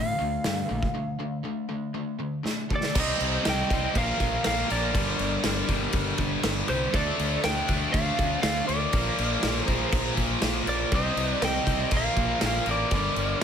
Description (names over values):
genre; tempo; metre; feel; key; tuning
hard rock; 120 BPM; 4/4; straight; unclear; A4 = 437 Hz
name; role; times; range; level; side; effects
lightly driven lead guitar; melody; 0.0-13.4 s; C5 to G5; -30 LUFS; right 1 dB; analog delay
cranked stack guitar; riff; 0.0-13.4 s; G2 to D4; -33 LUFS; left 12 dB; overdrive
overdriven electric guitar; riff; 0.0-13.4 s; G2 to D4; -34 LUFS; right 11 dB; none
fuzz fingered electric bass; bass; 0.0-13.3 s; G1 to A2; -31 LUFS; equal; overdrive
big rock drum kit; drums; 0.4-13.4 s; crash cymbal, hi-hat, kick drum, snare drum; -28 LUFS; equal; none
lead guitar through a small cranked amp; second line; 2.7-13.4 s; G4 to Eb5; -36 LUFS; right 2 dB; overdrive
scooped high-gain guitar; riff; 3.0-13.4 s; G2 to D4; -34 LUFS; left 1 dB; distortion
room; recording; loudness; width
small room ambience; none; -24 LUFS; side -8 dB against mid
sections
0.0-3.0 A section; 3.0-13.4 B section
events
break 1.0-3.0; drum fill 2.5-3.0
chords
0.0 Dm; 3.0 Cm; 4.0 Bb5; 4.9 Gm; 6.9 Dm; 8.9 Bb; 10.9 Cm; 11.9 Bb5; 12.9 Gm